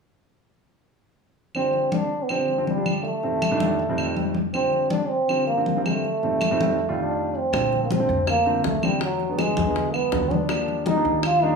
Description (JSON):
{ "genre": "Afro-Cuban jazz", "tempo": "161 BPM", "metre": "4/4", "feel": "straight", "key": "Bb major", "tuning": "A4 = 441 Hz", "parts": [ { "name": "claves", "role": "percussion", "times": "1.5-11.4 s", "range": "none", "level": "-32 LUFS", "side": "right 3 dB", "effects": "none" }, { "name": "congas", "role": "percussion", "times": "1.5-11.6 s", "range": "none", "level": "-28 LUFS", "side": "left 3 dB", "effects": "none" }, { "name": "trombone with cup mute", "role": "melody", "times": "1.6-11.6 s", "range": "F#3 to F4", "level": "-23 LUFS", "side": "right 1 dB", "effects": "none" }, { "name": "warm concert grand piano", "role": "accompaniment", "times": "1.6-11.6 s", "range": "F2 to F4", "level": "-27 LUFS", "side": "right 2 dB", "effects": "none" }, { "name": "upright bass", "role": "bass", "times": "7.5-11.6 s", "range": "Bb1 to F2", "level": "-29 LUFS", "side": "equal", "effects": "none" }, { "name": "bongos", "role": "percussion", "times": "7.5-11.4 s", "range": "none", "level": "-32 LUFS", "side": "left 5 dB", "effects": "none" } ], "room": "wet large studio reverb, RT60 0.9 s", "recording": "band playing live in one room, small room ambience", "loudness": "-20 LUFS", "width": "side -5 dB against mid", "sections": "1.5-7.5 A section; 7.5-11.6 B section", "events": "break 6.8-7.5", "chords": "1.5 G7sus4/D; 3.0 F7; 4.5 Bb69; 6.0 F7; 7.5 Bbmaj9; 9.0 E9; 10.5 Ebmaj7" }